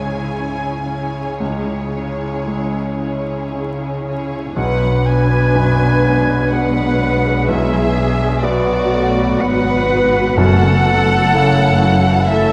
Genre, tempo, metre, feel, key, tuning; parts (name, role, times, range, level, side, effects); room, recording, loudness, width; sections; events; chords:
cinematic; 55-64 BPM; 3/4; rubato; B dorian; A4 = 440 Hz
warm studio violin section; melody; 0.0-12.5 s; C#5 to G#5; -26 LUFS; equal
rich studio violin section; second line; 0.0-12.5 s; F#4 to C#5; -27 LUFS; equal
bright grand piano; accompaniment; 0.0-12.5 s; B1 to B3; -25 LUFS; equal
warm studio viola section; accompaniment; 0.0-12.5 s; F#3 to F#4; -26 LUFS; equal
concert harp; arpeggios; 0.0-12.5 s; F#2 to B5; -26 LUFS; equal
warm studio cello section; bass; 0.0-12.5 s; F#2 to C#3; -24 LUFS; equal
clear oboe; second line; 4.6-12.5 s; D5 to G#5; -25 LUFS; equal
small flute group; second line; 4.6-12.5 s; F#4 to B4; -26 LUFS; equal
mellow French horn section; sustained chords; 4.6-12.5 s; E3 to D4; -25 LUFS; equal
warm studio double bass section; bass; 4.6-12.5 s; F#1 to B1; -24 LUFS; equal
timpani; percussion; 10.4-11.8 s; F#2; -23 LUFS; equal
wet scoring stage reverb, RT60 1.8 s; vinyl crackle; -16 LUFS; mono
0.0-4.6 A section; 4.6-12.5 A section
0.0 C#m; 4.6 Bm; 10.4 F#m7